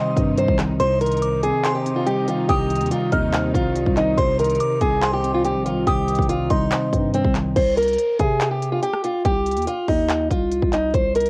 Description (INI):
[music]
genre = hip hop, trap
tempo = 142 BPM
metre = 4/4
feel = half-time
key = C minor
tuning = A4 = 443 Hz
[part]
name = picked acoustic archtop guitar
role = melody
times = 0.0-11.3 s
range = C4 to Eb5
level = -23 LUFS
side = equal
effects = low-pass filter, cassette tape
[part]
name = delicate synth tine bell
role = second line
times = 0.0-7.1 s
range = C6 to F6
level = -31 LUFS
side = equal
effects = chorus, cassette tape, tape echo
[part]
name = mellow tine electric piano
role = accompaniment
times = 0.0-7.6 s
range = C3 to C5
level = -26 LUFS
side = equal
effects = phaser, low-pass filter, cassette tape
[part]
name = rich studio string section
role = sustained chords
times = 0.0-7.5 s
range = C3 to Eb4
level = -36 LUFS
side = equal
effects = cassette tape
[part]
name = growling 808-style bass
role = bass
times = 0.2-11.3 s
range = Bb1 to C3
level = -28 LUFS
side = equal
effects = none
[part]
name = trap drum kit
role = drums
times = 0.2-11.3 s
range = crash cymbal, handclaps, hi-hat, kick drum, rim click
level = -27 LUFS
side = equal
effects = cassette tape
[sound]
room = light reverb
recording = home recording on cassette, vinyl crackle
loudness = -20 LUFS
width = mono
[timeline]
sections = 0.8-7.6 A section; 7.6-11.3 B section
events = none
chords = 0.0 Cm